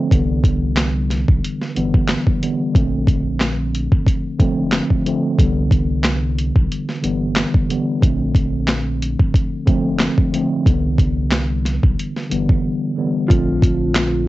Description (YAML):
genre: hip hop, boom-bap hip-hop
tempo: 91 BPM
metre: 4/4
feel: swing 55% on 16ths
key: Bb major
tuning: A4 = 440 Hz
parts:
  - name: mellow tine electric piano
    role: accompaniment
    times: 0.0-14.3 s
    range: C2 to C4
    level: -20 LUFS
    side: equal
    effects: medium stereo tremolo, high-pass filter, low-pass filter
  - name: soft dub sub bass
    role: bass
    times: 0.1-14.3 s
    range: F1 to C2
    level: -23 LUFS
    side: equal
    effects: none
  - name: boom bap sampler-style drum kit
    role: drums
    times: 0.1-14.1 s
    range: handclaps, hi-hat, kick drum, snare drum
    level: -17 LUFS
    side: equal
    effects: cassette tape
  - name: mellow electric guitar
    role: melody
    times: 13.3-14.3 s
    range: F3 to F4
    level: -21 LUFS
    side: equal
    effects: high-pass filter, low-pass filter, cassette tape, tape echo
  - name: finger snap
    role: percussion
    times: 14.0-14.1 s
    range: none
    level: barely audible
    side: none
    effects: none
room: light reverb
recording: home recording on cassette, nothing above 8.0 kHz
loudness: -15 LUFS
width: side -17 dB against mid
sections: 0.0-13.3 A section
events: silent gap 12.6-13.3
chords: 0.1 Cmaj9; 2.7 Bbmaj9; 5.4 Cmaj9; 8.0 Bbmaj9; 10.7 Cmaj9; 13.3 Bbmaj9